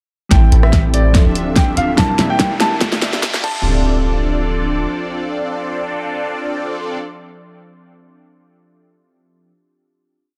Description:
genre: future bass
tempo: 144 BPM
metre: 4/4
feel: swing 54% on 16ths, half-time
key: D minor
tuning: A4 = 440 Hz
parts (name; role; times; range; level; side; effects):
- warm concert grand piano; melody; 0.3-7.0 s; D5 to A5; -25 LUFS; equal; sidechain pumping, dub echo
- glassy digital keys; accompaniment; 0.3-9.5 s; F3 to E5; -29 LUFS; equal; chorus, sidechain pumping, dub echo
- concert harp; arpeggios; 0.3-6.4 s; C4 to G4; -29 LUFS; equal; none
- big bright polysynth; riff; 0.3-7.0 s; Bb3 to G5; -25 LUFS; equal; chorus, phaser, sidechain pumping
- warm 808-style bass; bass; 0.3-4.9 s; D1 to A1; -18 LUFS; equal; sidechain pumping
- electronic kick drum; drums; 0.3-3.5 s; none; -17 LUFS; equal; none
- pop drum kit; drums; 0.3-3.5 s; crash cymbal, hi-hat, rim click, snare drum; -21 LUFS; equal; none
- riser and impact; sound effects; 1.7-7.0 s; none; -30 LUFS; equal; none
room: light reverb, digital ambience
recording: dark, warm production, high-pass filter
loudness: -16 LUFS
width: mono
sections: 0.3-3.6 build; 3.6-7.0 final hit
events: build-up 0.3-3.6; drum fill 0.3-3.6; filter sweep on analog polysynth 0.3-3.6; filter sweep 0.3-3.6; riser 1.7-3.6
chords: 0.3 Am7; 1.1 Dm7; 2.0 Em7b5; 2.8 Gm7; 3.4 Dm7

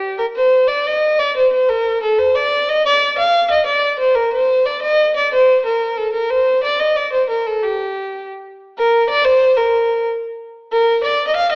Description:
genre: medieval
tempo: 121 BPM (dotted quarters)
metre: 6/8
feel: straight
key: unclear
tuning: A4 = 436 Hz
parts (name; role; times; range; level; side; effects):
- dark fiddle; solo; 0.0-11.6 s; G4 to F5; -16 LUFS; equal; none
room: wet recital hall reverb, RT60 1.4 s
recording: worn, warbling old tape, cassette tape, warbly pitch drift, AM radio sound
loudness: -16 LUFS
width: mono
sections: 0.7-8.6 A section; 8.6-11.6 B section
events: speeding up 0.0-11.6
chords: none

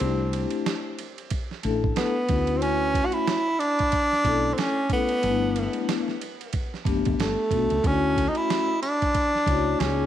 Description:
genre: hip hop, jazz-hop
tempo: 92 BPM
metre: 4/4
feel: swing 59% on 16ths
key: D major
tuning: A4 = 440 Hz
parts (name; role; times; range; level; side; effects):
- breathy tenor saxophone; melody; 0.0-10.1 s; A3 to F#4; -24 LUFS; right 1 dB; tape echo
- vibraphone with soft mallets; accompaniment; 0.0-10.1 s; A3 to C#5; -28 LUFS; left 8 dB; none
- woody fretless electric bass; bass; 0.0-10.1 s; F#1 to D2; -28 LUFS; equal; tube saturation
- dusty soul sampler-style drum kit; drums; 0.0-10.0 s; hi-hat, kick drum, ride cymbal, snare drum; -30 LUFS; right 2 dB; none
room: light reverb, digital ambience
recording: 1960s-style stereo, vinyl crackle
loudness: -22 LUFS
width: side -11 dB against mid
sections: 0.0-10.1 A section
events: none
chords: 0.0 C6; 2.3 Dmaj7; 5.2 G69; 7.8 Dmaj7

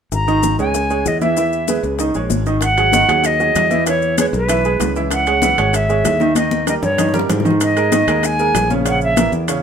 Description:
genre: latin, salsa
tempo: 192 BPM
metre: 4/4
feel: straight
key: G# minor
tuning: A4 = 440 Hz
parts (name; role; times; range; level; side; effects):
- bright silver concert flute; melody; 0.1-9.3 s; B4 to A#5; -17 LUFS; right 1 dB; none
- modern bright fingered electric bass; bass; 0.1-9.6 s; G#1 to G#2; -20 LUFS; left 1 dB; none
- bongos; percussion; 0.1-9.6 s; none; -26 LUFS; left 7 dB; none
- congas; percussion; 0.1-9.6 s; none; -23 LUFS; left 2 dB; none
- maracas; percussion; 0.1-9.6 s; none; -28 LUFS; left 10 dB; none
- bright baby grand piano; accompaniment; 0.3-9.6 s; C#3 to E5; -19 LUFS; right 3 dB; none
- timbales; percussion; 2.6-9.6 s; none; -26 LUFS; right 4 dB; none
room: moderate studio reverb, RT60 0.7 s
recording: minimal, uncompressed stereo recording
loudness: -13 LUFS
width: side -7 dB against mid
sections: 0.1-2.6 A section; 2.6-9.6 B section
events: drum fill 6.4-7.6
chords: 0.1 G#sus2; 0.7 C#m; 1.4 E; 2.0 C#sus2; 2.6 G#5; 3.9 E6; 5.1 C#madd9; 6.4 D#; 7.6 G#sus2; 8.9 A#dim

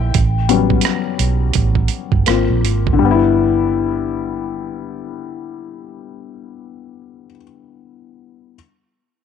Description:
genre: R&B, neo-soul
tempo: 79-89 BPM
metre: 4/4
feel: swing 61% on 16ths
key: G major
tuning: A4 = 440 Hz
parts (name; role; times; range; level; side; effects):
- warm upright piano; accompaniment; 0.0-8.6 s; D3 to G5; -19 LUFS; left 10 dB; none
- vintage muted fingered electric bass; bass; 0.0-7.3 s; G1 to B1; -18 LUFS; right 2 dB; none
- boom bap sampler-style drum kit; drums; 0.1-3.0 s; hi-hat, kick drum, rim click; -19 LUFS; right 7 dB; none
room: little or no reverb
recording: 1960s-style stereo with parts hard left and right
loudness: -14 LUFS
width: side -8 dB against mid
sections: 0.0-3.0 A section; 3.0-6.0 B section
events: slowing down 0.0-3.0; upright piano solo 0.0-3.0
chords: 0.1 A13; 2.3 Ab6; 3.0 G6

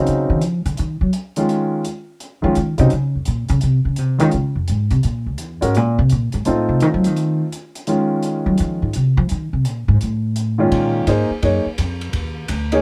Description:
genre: jazz, small-group swing and bop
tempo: 169 BPM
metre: 4/4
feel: swing 66% on 8ths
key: Bb minor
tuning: A4 = 440 Hz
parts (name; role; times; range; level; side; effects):
- warm baby grand piano; accompaniment; 0.0-12.8 s; Bb2 to Db5; -21 LUFS; equal; none
- upright bass; bass; 0.0-12.8 s; Db2 to Gb3; -20 LUFS; equal; none
- compact cocktail drum kit; drums; 0.1-12.8 s; hi-hat, kick drum, ride cymbal; -34 LUFS; equal; none
room: little or no reverb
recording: dark, warm production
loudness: -19 LUFS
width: mono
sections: 0.0-10.7 A section; 10.7-12.8 B section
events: upright bass solo 0.0-10.7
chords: 0.0 Ebm9; 3.6 Fm7; 5.0 Gb7 (rootless); 6.5 F7; 7.9 Bbm9 (rootless); 10.0 F7; 10.7 Bbm9; 12.1 Eb5

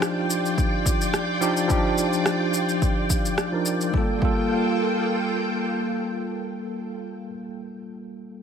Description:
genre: sunset chillout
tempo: 107 BPM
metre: 4/4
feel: swing 55% on 16ths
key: G minor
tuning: A4 = 440 Hz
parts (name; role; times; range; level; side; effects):
- bell-like tine electric piano; accompaniment; 0.0-8.4 s; F3 to Bb4; -25 LUFS; equal; auto-pan, low-pass filter, ping-pong delay
- soft string machine; sustained chords; 0.0-6.9 s; Bb3 to G5; -28 LUFS; equal; ensemble chorus
- electronic rim click and shaker; drums; 0.0-3.9 s; none; -28 LUFS; equal; none
- electronic kick drum; drums; 0.6-4.4 s; none; -24 LUFS; equal; overdrive
room: moderate plate reverb, RT60 2.1 s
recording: none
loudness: -21 LUFS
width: side -7 dB against mid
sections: 0.0-3.9 A section; 3.9-6.2 B section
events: filter sweep on tine electric piano 0.0-3.9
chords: 0.0 Ebmaj9; 3.9 Gm9

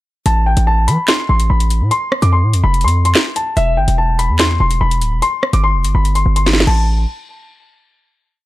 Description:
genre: hip hop, drill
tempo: 145 BPM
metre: 4/4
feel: half-time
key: A minor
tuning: A4 = 441 Hz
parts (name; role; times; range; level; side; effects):
- dark concert grand piano; melody; 0.3-6.9 s; E5 to D6; -18 LUFS; left 2 dB; low-pass filter
- hard-hitting 808-style bass; bass; 0.3-7.1 s; D1 to E3; -13 LUFS; equal; none
- drill drum kit; drums; 0.3-6.8 s; crash cymbal, handclaps, hi-hat, rim click, snare drum; -17 LUFS; equal; none
room: little or no reverb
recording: dark, warm production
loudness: -12 LUFS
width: side -16 dB against mid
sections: 0.3-6.9 hook; 6.9-8.5 final hit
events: drum fill 6.5-6.9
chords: 0.3 A5; 1.9 F5; 3.6 E5; 5.2 Fsus2 (rootless); 6.7 N.C.

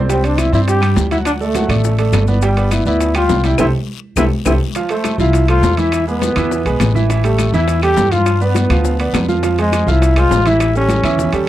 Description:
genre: latin, salsa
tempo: 205 BPM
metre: 4/4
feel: straight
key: C major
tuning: A4 = 440 Hz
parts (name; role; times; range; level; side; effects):
- clear concert grand piano; accompaniment; 0.0-11.5 s; E3 to G5; -20 LUFS; right 6 dB; none
- upright bass; bass; 0.0-11.5 s; G1 to G2; -16 LUFS; equal; none
- clear trombone; melody; 0.1-11.5 s; G3 to G4; -17 LUFS; left 1 dB; none
- bongos; percussion; 0.1-11.3 s; none; -27 LUFS; left 8 dB; none
- congas; percussion; 0.1-11.5 s; none; -25 LUFS; left 2 dB; none
- guiro; percussion; 0.1-11.5 s; none; -34 LUFS; left 13 dB; none
- maracas; percussion; 0.1-11.5 s; none; -32 LUFS; left 15 dB; none
- timbales; percussion; 0.1-11.5 s; none; -26 LUFS; right 5 dB; none
- claves; percussion; 0.4-11.2 s; none; -29 LUFS; left 10 dB; none
room: little or no reverb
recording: dry, close 1970s-style studio recording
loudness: -12 LUFS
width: side -13 dB against mid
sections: 0.0-4.8 A section; 4.8-11.5 B section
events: drum fill 3.6-4.8; band accent 3.6-4.8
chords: 0.1 Csus2; 1.3 D; 2.4 G; 3.6 C5; 4.8 Fmaj7; 5.9 E; 7.1 A5; 8.3 G7; 9.4 Fm; 10.6 A7

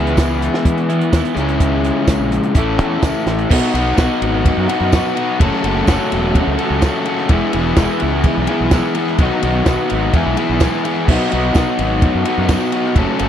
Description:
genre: indie rock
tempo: 127 BPM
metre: 4/4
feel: straight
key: B mixolydian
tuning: A4 = 440 Hz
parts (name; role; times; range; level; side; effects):
- crunchy overdriven guitar; riff; 0.0-13.3 s; F#2 to F#4; -20 LUFS; right 8 dB; wide subtle chorus
- overdriven electric guitar; riff; 0.0-13.3 s; E3 to A4; -19 LUFS; left 10 dB; none
- fuzz fingered electric bass; bass; 0.0-13.3 s; E1 to E3; -20 LUFS; equal; overdrive
- compact cocktail drum kit; drums; 0.1-13.3 s; crash cymbal, hi-hat, kick drum, ride cymbal, snare drum; -16 LUFS; right 1 dB; none
- tambourine; percussion; 0.2-12.6 s; none; -37 LUFS; right 14 dB; none
room: little or no reverb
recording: dry, close 1970s-style studio recording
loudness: -13 LUFS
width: side -9 dB against mid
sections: 0.0-3.5 A section; 3.5-13.3 B section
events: none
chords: 0.0 E; 1.4 C#m; 2.6 A; 3.5 B; 5.4 F#m7; 7.3 E; 9.2 B; 10.1 E; 11.1 B

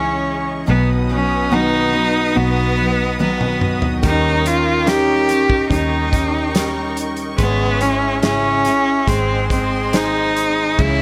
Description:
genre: pop ballad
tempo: 72 BPM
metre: 4/4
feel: straight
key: C# minor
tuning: A4 = 440 Hz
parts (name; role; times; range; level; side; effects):
- clear cello; melody; 0.0-11.0 s; B3 to G4; -21 LUFS; equal; none
- clear grand piano; accompaniment; 0.0-11.0 s; B2 to D#5; -25 LUFS; equal; none
- warm studio string section; sustained chords; 0.0-11.0 s; G#4 to D#6; -30 LUFS; equal; none
- picked steel-string acoustic guitar; arpeggios; 0.0-11.0 s; G#2 to B4; -26 LUFS; equal; none
- vintage muted fingered electric bass; bass; 0.0-11.0 s; G#1 to D#2; -25 LUFS; equal; none
- loose indie drum kit; drums; 3.2-11.0 s; crash cymbal, hi-hat, kick drum, snare drum, toms; -23 LUFS; equal; none
room: light reverb, studio ambience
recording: none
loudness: -17 LUFS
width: mono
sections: 0.0-10.8 A section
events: drum fill 3.2-4.0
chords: 0.0 C#madd9; 0.7 B; 4.0 D#7; 7.4 C#m/G#; 9.1 G#

